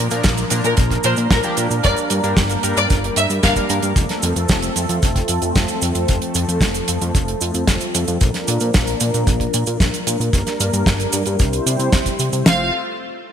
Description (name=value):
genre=italo disco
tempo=113 BPM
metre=4/4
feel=straight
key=F major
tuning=A4 = 440 Hz
part: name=warm analog pad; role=sustained chords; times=0.0-12.7 s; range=F3 to C5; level=-23 LUFS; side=equal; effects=chorus
part: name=fat analog bass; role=bass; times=0.0-12.7 s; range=F1 to C3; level=-22 LUFS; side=equal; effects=tube saturation
part: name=chorused polysynth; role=stabs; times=0.1-3.9 s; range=F3 to Bb4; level=-25 LUFS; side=left 2 dB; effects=ping-pong delay
part: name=damped 70s drum kit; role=drums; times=0.1-12.4 s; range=cabasa, hi-hat, snare drum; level=-21 LUFS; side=right 2 dB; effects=none
part: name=damped 70s drum kit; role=drums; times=0.2-12.6 s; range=kick drum, ride cymbal, snare drum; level=-17 LUFS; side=equal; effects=none
part: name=rich studio violin section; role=melody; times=0.6-3.5, 12.5-12.7 s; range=Bb4 to F5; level=-22 LUFS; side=equal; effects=ping-pong delay
room=moderate lush hall reverb, RT60 1.9 s, small room ambience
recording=bright 1980s-style digital production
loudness=-15 LUFS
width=side -8 dB against mid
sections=0.0-12.5 A section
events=filter sweep on analog synth pad 0.0-12.5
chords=0.0 Bb; 1.8 Gm; 4.0 F; 8.2 Bb; 10.3 Gm; 11.4 C; 12.5 F